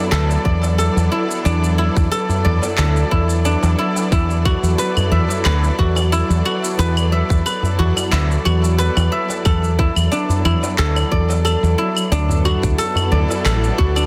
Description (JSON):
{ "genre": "organic downtempo", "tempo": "90 BPM", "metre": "4/4", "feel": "swing 54% on 16ths", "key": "unclear", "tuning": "A4 = 444 Hz", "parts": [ { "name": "rich symphonic string section", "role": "sustained chords", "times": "0.0-14.1 s", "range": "F#3 to D5", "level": "-26 LUFS", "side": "equal", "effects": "sidechain pumping" }, { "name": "guzheng", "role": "arpeggios", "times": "0.0-14.1 s", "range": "D4 to E5", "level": "-24 LUFS", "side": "equal", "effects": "digital delay" }, { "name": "woody fretless electric bass", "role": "bass", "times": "0.1-14.1 s", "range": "A1 to E2", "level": "-19 LUFS", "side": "equal", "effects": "sidechain pumping" }, { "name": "electronic handclaps, shaker and claves", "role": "drums", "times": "0.1-14.1 s", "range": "none", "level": "-28 LUFS", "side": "equal", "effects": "none" }, { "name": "darbuka", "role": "percussion", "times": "0.3-13.4 s", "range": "none", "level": "-26 LUFS", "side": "equal", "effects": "none" }, { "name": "electronic kick drum", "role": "drums", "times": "0.5-13.9 s", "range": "none", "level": "-21 LUFS", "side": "equal", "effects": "none" } ], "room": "light reverb, studio reverb", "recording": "dense, heavily limited modern master", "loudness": "-17 LUFS", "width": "mono", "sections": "0.0-14.1 A section", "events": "none", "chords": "0.0 Esus2; 12.1 D" }